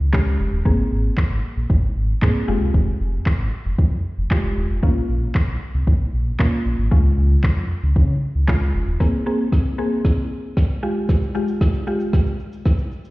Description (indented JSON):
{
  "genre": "dance-pop",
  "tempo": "115 BPM",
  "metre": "4/4",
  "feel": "straight",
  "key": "Ab major",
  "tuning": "A4 = 441 Hz",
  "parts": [
    { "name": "sub bass with octave", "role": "bass", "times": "0.0-9.0 s", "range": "Eb1 to Db3", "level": "-19 LUFS", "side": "equal", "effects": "sidechain pumping" },
    { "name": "mallet-like synth pluck", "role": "accompaniment", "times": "0.1-12.7 s", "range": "Ab3 to Ab4", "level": "-24 LUFS", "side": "equal", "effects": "chorus, sidechain pumping" },
    { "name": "smooth R&B drum kit", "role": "drums", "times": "0.1-13.1 s", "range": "handclaps, kick drum, shaker, snare drum", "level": "-19 LUFS", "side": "equal", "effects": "none" }
  ],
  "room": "light reverb",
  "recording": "heard muffled through a wall, stone room reverb, EQ",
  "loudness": "-17 LUFS",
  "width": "side -20 dB against mid",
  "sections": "0.0-9.0 A section; 9.0-13.1 B section",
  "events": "build-up 9.0-13.1; drum fill 9.0-13.1",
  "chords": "0.0 Db; 0.7 Abadd9; 2.5 Fmadd9; 4.8 Bbm; 6.9 Db; 9.0 Abadd9; 10.8 Fmadd9"
}